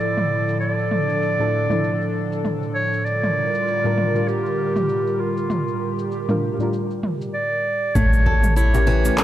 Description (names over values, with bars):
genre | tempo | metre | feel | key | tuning
organic downtempo | 98 BPM | 4/4 | swing 57% on 16ths | unclear | A4 = 441 Hz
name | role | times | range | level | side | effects
mellow clarinet | melody | 0.0-9.2 s | F4 to D5 | -23 LUFS | equal | analog delay
airy breathy pad | sustained chords | 0.0-9.2 s | A2 to Bb4 | -25 LUFS | right 1 dB | chorus, vintage 12-bit sampler grit, sidechain pumping
deep house drum kit | drums | 0.0-9.2 s | cabasa, handclaps, toms | -26 LUFS | right 1 dB | overdrive, low-pass filter on perc, small room ambience, low-pass filter on toms, low-pass filter on snare
deep mellow chord stab | accompaniment | 1.4-9.2 s | A2 to Bb4 | -25 LUFS | left 1 dB | chorus, sidechain pumping, tape echo
flamenco guitar | arpeggios | 8.0-9.2 s | E3 to A4 | -24 LUFS | equal | analog delay
woody FM bass | bass | 8.0-9.1 s | A1 | -17 LUFS | equal | tube saturation
electronic kick drum | drums | 8.0-8.4 s | none | -22 LUFS | equal | overdrive, small room ambience
impact | sound effects | 8.0-9.2 s | none | -27 LUFS | equal | none
cajon | percussion | 8.7-9.2 s | none | -27 LUFS | left 2 dB | tape echo
room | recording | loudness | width
moderate plate reverb, RT60 2.0 s | echo-heavy mix | -18 LUFS | side -12 dB against mid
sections
0.0-8.0 A section; 8.0-9.2 B section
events
impact 8.0-9.2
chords
0.0 Dmadd9/A; 3.1 Gm7/A; 8.0 A7b9